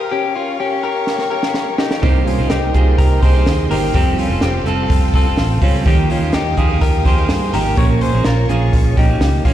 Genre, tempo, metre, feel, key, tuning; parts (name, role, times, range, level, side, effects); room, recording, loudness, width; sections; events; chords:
jangly indie pop; 125 BPM; 4/4; straight; Bb dorian; A4 = 439 Hz
string machine, violas; sustained chords; 0.0-9.5 s; A4 to Eb6; -27 LUFS; equal; ensemble chorus
direct-recorded clean electric guitar; arpeggios; 0.0-9.5 s; C4 to Db5; -20 LUFS; left 6 dB; lush chorus, slapback echo
compact cocktail drum kit; drums; 1.1-9.5 s; hi-hat, kick drum, snare drum; -17 LUFS; equal
clean electric guitar; accompaniment; 2.0-9.5 s; Bb2 to C5; -20 LUFS; right 7 dB; tube saturation, slapback echo
vintage muted fingered electric bass; bass; 2.0-9.5 s; F1 to G2; -17 LUFS; equal
studio ambience; live gig heard through the venue's PA, recital hall reverb; -13 LUFS; side -12 dB against mid
0.0-9.5 A section
drum fill 1.1-2.0
0.1 Bbm; 2.0 Cm7; 3.9 Fadd9; 5.9 Ebadd9; 7.8 Bbm